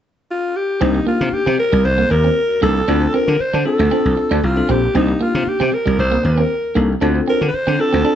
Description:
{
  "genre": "funk",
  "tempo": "116 BPM",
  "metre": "4/4",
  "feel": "straight",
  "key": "C dorian",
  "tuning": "A4 = 440 Hz",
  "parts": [
    { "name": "breathy alto saxophone", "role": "melody", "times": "0.3-8.2 s", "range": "Eb4 to C5", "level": "-18 LUFS", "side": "left 1 dB", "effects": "none" },
    { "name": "bell-like tine electric piano", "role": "accompaniment", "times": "0.8-8.2 s", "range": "Bb3 to A4", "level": "-21 LUFS", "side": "left 4 dB", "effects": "none" },
    { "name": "clean electric guitar", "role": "riff", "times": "0.8-8.2 s", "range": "G3 to D4", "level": "-22 LUFS", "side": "right 4 dB", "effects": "none" },
    { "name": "gritty slap bass", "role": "bass", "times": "0.8-8.0 s", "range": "Bb1 to D3", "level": "-18 LUFS", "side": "equal", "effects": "overdrive" }
  ],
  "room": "light reverb",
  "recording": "band playing live in one room, nothing above 7.9 kHz",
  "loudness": "-14 LUFS",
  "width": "side -10 dB against mid",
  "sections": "0.8-8.2 A section",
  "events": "none",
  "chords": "0.0 N.C.; 0.8 Cm9; 2.9 Dm7; 4.9 Cm9; 7.0 Dm7"
}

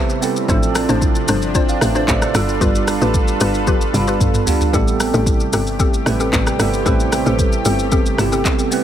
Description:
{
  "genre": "amapiano",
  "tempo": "113 BPM",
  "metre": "4/4",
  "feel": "straight",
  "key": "A minor",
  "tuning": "A4 = 444 Hz",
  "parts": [
    { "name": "bell-like tine electric piano", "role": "accompaniment", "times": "0.0-8.8 s", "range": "F3 to A5", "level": "-21 LUFS", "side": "right 7 dB", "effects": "phaser" },
    { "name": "lush unison pad", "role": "sustained chords", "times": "0.0-8.8 s", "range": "C3 to B4", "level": "-23 LUFS", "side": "left 1 dB", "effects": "chorus" },
    { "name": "afro-pop drum kit", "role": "drums", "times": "0.1-8.8 s", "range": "handclaps, hi-hat, kick drum, rim click, shaker, toms", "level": "-18 LUFS", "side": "equal", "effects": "none" },
    { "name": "mallet-like synth pluck", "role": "stabs", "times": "0.5-8.4 s", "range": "C4 to C5", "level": "-24 LUFS", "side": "left 5 dB", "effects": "chorus, tape echo" },
    { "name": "tight log drum bass", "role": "bass", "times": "0.5-8.4 s", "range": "G1 to A1", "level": "-20 LUFS", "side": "equal", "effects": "none" }
  ],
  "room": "little or no reverb",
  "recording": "none",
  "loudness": "-14 LUFS",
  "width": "side -10 dB against mid",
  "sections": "0.0-8.8 A section",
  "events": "tine electric piano fill 0.0-0.5; drum fill 3.7-4.7",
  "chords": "0.5 Dm7; 2.3 G7; 4.7 Am7"
}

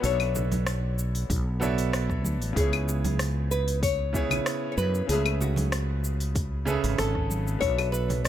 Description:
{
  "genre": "sunset chillout",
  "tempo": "95 BPM",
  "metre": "4/4",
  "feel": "straight",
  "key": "B dorian",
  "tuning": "A4 = 440 Hz",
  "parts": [
    { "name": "nylon-string guitar", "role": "melody", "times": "0.0-8.3 s", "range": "F#4 to D5", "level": "-31 LUFS", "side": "left 2 dB", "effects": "tape echo" },
    { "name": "bright concert grand piano", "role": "accompaniment", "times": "0.0-8.3 s", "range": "C#3 to E5", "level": "-32 LUFS", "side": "moving between left 4 dB and right 6 dB", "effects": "auto-pan, tape echo" },
    { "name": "mellow fretless electric bass", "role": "bass", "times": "0.0-8.3 s", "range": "G#1 to F#2", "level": "-27 LUFS", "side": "equal", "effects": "none" },
    { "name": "deep house drum kit", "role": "drums", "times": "0.0-8.3 s", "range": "claves, hi-hat, rim click, shaker", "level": "-33 LUFS", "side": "left 3 dB", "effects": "none" },
    { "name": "bongos and congas", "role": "percussion", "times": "0.2-8.2 s", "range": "none", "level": "-35 LUFS", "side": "right 3 dB", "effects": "none" },
    { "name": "electronic kick drum", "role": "drums", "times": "1.3-7.7 s", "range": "none", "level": "-30 LUFS", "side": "equal", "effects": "none" }
  ],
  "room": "small room ambience",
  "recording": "none",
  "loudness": "-24 LUFS",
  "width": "side -11 dB against mid",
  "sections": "0.0-8.3 A section",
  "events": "none",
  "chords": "0.0 Bm11; 2.6 C#m7; 5.1 F#m11/C#; 7.6 Bm11"
}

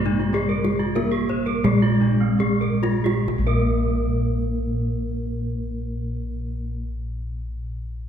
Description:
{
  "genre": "Balinese gamelan",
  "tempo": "65-108 BPM",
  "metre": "4/4",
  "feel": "straight",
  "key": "Bb slendro",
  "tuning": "A4 = 439 Hz",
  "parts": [
    { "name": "gamelan-type bronze metallophone", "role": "melody", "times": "0.0-6.8 s", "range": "Ab3-45c to Bb3", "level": "-25 LUFS", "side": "equal", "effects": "none" },
    { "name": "gamelan-type bronze metallophone", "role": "accompaniment", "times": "0.0-6.8 s", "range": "Ab3-45c to Bb3", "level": "-32 LUFS", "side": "left 2 dB", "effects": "none" },
    { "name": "gamelan-type bronze metallophone", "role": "arpeggios", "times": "0.0-6.8 s", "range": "C4+30c to Bb4", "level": "-30 LUFS", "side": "right 5 dB", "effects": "none" },
    { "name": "gamelan-type bossed gongs", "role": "bass", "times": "0.0-6.7 s", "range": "Bb1 to Ab4-45c", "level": "-25 LUFS", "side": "equal", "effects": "none" },
    { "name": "gamelan-type bronze metallophone", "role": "arpeggios", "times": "0.1-6.8 s", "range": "Eb4-35c to C5+30c", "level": "-30 LUFS", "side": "left 4 dB", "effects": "none" },
    { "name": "kendang", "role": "percussion", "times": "0.1-3.7 s", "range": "none", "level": "-30 LUFS", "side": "right 4 dB", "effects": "none" }
  ],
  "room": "wet concert hall reverb, RT60 2.3 s",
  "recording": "heard from further back in the room",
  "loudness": "-20 LUFS",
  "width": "side -9 dB against mid",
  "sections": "0.0-3.3 A section; 3.3-8.1 B section",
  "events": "slowing down 0.0-3.3; drum fill 2.4-3.3",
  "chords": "none"
}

